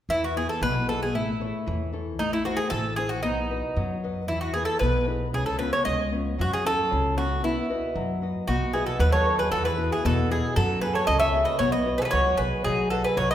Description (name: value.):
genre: greek folk, Greek bouzouki band.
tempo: 115 BPM.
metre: 2/4.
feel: straight.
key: E major.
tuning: A4 = 439 Hz.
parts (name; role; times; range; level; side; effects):
Greek bouzouki; melody; 0.1-13.3 s; D#4 to E5; -25 LUFS; right 1 dB; none.
nylon-string guitar; accompaniment; 0.1-13.3 s; B2 to D#5; -29 LUFS; left 3 dB; none.
upright bass; bass; 0.1-13.3 s; A1 to F#2; -29 LUFS; equal; none.
mandolin; second line; 8.5-13.3 s; D#4 to C#5; -31 LUFS; right 4 dB; none.
room: wet recital hall reverb, RT60 1.4 s.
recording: recorded in a church or concert hall.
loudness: -23 LUFS.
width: side -11 dB against mid.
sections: 0.1-8.5 A section; 8.5-13.3 B section.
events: none.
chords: 0.1 E; 1.1 A; 2.2 Am; 3.2 B; 4.3 E; 5.3 C#7; 6.4 F#m; 7.4 B; 9.5 Eadd9; 10.6 F#madd9; 11.6 B.